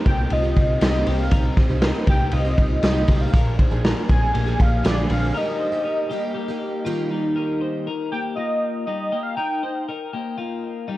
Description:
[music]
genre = jangly indie pop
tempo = 119 BPM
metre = 4/4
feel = straight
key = Eb major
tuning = A4 = 439 Hz
[part]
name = picked plugged-in twelve-string acoustic guitar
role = accompaniment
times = 0.0-7.9 s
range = Bb2 to Ab4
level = -28 LUFS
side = right 3 dB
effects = dub echo
[part]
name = twelve-string electric guitar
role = arpeggios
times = 0.0-11.0 s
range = G3 to C5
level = -28 LUFS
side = left 4 dB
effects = dub echo
[part]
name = warm velvety synth lead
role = melody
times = 0.1-9.8 s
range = D5 to Ab5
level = -27 LUFS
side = equal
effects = chorus, dub echo
[part]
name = vintage muted picked electric bass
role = bass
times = 0.1-5.3 s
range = Bb1 to C2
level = -23 LUFS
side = equal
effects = none
[part]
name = raw garage drum kit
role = drums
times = 0.1-5.2 s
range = hi-hat, kick drum, ride cymbal, snare drum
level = -20 LUFS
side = equal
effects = vintage 12-bit sampler grit
[sound]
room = light reverb, small room reverb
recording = echo-heavy mix, cassette tape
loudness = -19 LUFS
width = side -16 dB against mid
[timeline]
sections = 0.0-7.4 A section; 7.4-11.0 A section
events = break 5.3-7.4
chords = 0.0 Cm; 3.3 Bb7; 5.3 Eb

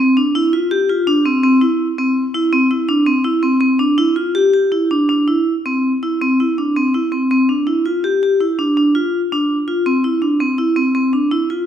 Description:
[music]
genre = contemporary instrumental, contemporary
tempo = 165 BPM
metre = 5/4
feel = straight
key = unclear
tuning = A4 = 440 Hz
[part]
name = vibraphone with hard mallets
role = solo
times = 0.0-11.6 s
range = C4 to G4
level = -14 LUFS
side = equal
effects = none
[sound]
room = light reverb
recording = minimal, uncompressed stereo recording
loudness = -14 LUFS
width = side -9 dB against mid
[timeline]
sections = 0.0-6.2 A section; 6.2-11.7 B section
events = none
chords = none

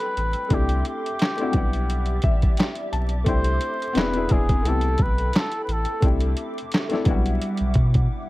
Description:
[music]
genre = lo-fi hip hop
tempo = 87 BPM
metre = 4/4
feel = swing 56% on 16ths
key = E minor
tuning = A4 = 439 Hz
[part]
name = trumpet with cup mute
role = melody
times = 0.0-6.0 s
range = G4 to C5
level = -28 LUFS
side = equal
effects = low-pass filter, tape echo
[part]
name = felt-muted upright piano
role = accompaniment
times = 0.0-8.3 s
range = F#3 to A5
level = -28 LUFS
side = left 4 dB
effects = low-pass filter
[part]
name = hollow soft pad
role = sustained chords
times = 0.0-8.3 s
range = G3 to D6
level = -34 LUFS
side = right 1 dB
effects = ensemble chorus, low-pass filter
[part]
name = lo-fi sampler-style drum kit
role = drums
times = 0.0-8.1 s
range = handclaps, hi-hat, kick drum, snare drum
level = -22 LUFS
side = equal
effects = overdrive
[part]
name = sub bass with octave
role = bass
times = 0.2-8.1 s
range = E1 to B2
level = -24 LUFS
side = equal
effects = none
[sound]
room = light reverb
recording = dark, warm production, vinyl crackle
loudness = -20 LUFS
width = side -18 dB against mid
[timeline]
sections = 0.0-8.3 A section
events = felt piano fill 1.9-3.3; break 8.1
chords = 0.0 Am9; 0.5 C69; 1.5 Em9; 3.3 C69; 4.0 E7b13; 4.6 Am9; 6.0 C69; 7.1 Em9/B

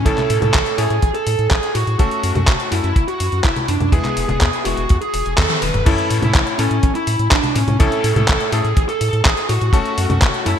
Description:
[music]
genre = italo disco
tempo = 124 BPM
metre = 4/4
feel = straight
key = unclear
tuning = A4 = 440 Hz
[part]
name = round analog bass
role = bass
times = 0.0-10.6 s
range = E1 to A2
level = -20 LUFS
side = equal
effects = none
[part]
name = bluesy overdriven lead guitar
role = melody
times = 0.1-10.6 s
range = C#4 to B4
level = -20 LUFS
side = right 1 dB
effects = distortion, ping-pong delay
[part]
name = bright electric grand piano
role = stabs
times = 0.1-10.6 s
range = A2 to A4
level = -24 LUFS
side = left 4 dB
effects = none
[part]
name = detuned 8-bit digital drum machine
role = drums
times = 0.1-10.6 s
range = congas, crash cymbal, handclaps, hi-hat, toms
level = -21 LUFS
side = equal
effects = small room ambience, gated reverb
[part]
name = kick drum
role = drums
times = 0.1-10.3 s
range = none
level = -15 LUFS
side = equal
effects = small room ambience
[sound]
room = moderate lush hall reverb, RT60 2.1 s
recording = bright 1980s-style digital production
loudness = -14 LUFS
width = side -9 dB against mid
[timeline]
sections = 0.0-5.9 A section; 5.9-10.6 B section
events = drum fill 5.4-5.9; band accent 5.4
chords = 0.0 A; 2.0 F#m; 3.9 E; 5.9 A; 9.7 F#m

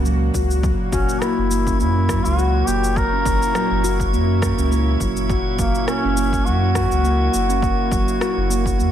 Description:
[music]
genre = organic downtempo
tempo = 103 BPM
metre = 4/4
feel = swing 55% on 16ths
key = unclear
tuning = A4 = 440 Hz
[part]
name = bowed-like drone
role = sustained chords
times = 0.0-8.9 s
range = A#2 to F#4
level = -28 LUFS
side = left 3 dB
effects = built-in reverb, sidechain pumping
[part]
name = handpan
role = arpeggios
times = 0.0-8.9 s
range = F#3 to F#4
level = -23 LUFS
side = right 2 dB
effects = digital delay
[part]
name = warm sub bass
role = bass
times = 0.0-8.9 s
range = F#1 to F#2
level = -20 LUFS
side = equal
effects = none
[part]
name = electronic shaker and rim click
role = drums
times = 0.1-8.9 s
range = none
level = -30 LUFS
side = equal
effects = overdrive, studio reverb
[part]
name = electronic kick drum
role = drums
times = 0.3-8.8 s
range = none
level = -24 LUFS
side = equal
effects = overdrive, studio reverb
[part]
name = drifting glass-harmonics texture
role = texture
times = 1.0-8.9 s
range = C#5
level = -32 LUFS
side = right 8 dB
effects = chorus, built-in reverb
[part]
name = warm duduk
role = melody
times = 0.9-8.9 s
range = A#3 to A#4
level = -24 LUFS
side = left 1 dB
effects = ping-pong delay
[sound]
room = light reverb, digital ambience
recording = none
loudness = -16 LUFS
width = side -10 dB against mid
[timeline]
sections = 0.0-8.9 A section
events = none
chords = 0.0 F#

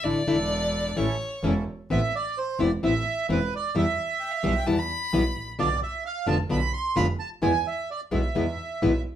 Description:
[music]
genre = tango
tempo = 130 BPM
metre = 4/4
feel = rubato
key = A minor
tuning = A4 = 441 Hz
[part]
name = warm violin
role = second line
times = 0.0-5.5 s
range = C#5 to B5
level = -30 LUFS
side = left 2 dB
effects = none
[part]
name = nylon-string guitar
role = accompaniment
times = 0.0-8.9 s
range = B2 to F4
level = -25 LUFS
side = left 3 dB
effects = none
[part]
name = bandoneon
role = stabs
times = 0.0-1.6 s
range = C#4 to A4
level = -36 LUFS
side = right 4 dB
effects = none
[part]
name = rich double bass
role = bass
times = 0.0-9.0 s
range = E1 to E2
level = -28 LUFS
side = right 2 dB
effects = none
[part]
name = bandoneon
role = melody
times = 1.9-9.0 s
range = B4 to C6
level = -28 LUFS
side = right 5 dB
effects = none
[sound]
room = wet studio reverb, RT60 0.6 s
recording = band playing live in one room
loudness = -23 LUFS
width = side -10 dB against mid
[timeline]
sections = 0.0-1.9 A section; 1.9-9.2 B section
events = violin solo 0.0-1.9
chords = 0.0 Asus4; 1.0 A; 1.9 Amadd9; 3.8 Em; 5.6 Bdim; 7.4 E

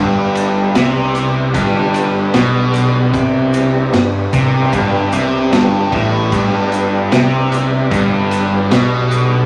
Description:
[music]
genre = psychedelic rock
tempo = 75 BPM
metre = 4/4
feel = straight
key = G major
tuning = A4 = 441 Hz
[part]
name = bright tonewheel organ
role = sustained chords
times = 0.0-9.5 s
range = G3 to G4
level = -23 LUFS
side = equal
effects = slow rotary speaker, chorus vibrato
[part]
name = overdriven electric guitar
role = riff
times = 0.0-9.5 s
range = G2 to C3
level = -17 LUFS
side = equal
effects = phaser
[part]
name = fuzz picked electric bass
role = bass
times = 0.0-9.5 s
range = G1 to C2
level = -24 LUFS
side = equal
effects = overdrive
[part]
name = crunchy breakbeat drum kit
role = drums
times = 0.4-9.3 s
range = kick drum, ride cymbal, snare drum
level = -22 LUFS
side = equal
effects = none
[part]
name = egg shaker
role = percussion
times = 0.4-9.3 s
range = none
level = -42 LUFS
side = equal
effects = none
[sound]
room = wet large studio reverb, RT60 1.4 s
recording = vinyl crackle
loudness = -14 LUFS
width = mono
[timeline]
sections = 0.0-9.5 A section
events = none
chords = 0.0 G

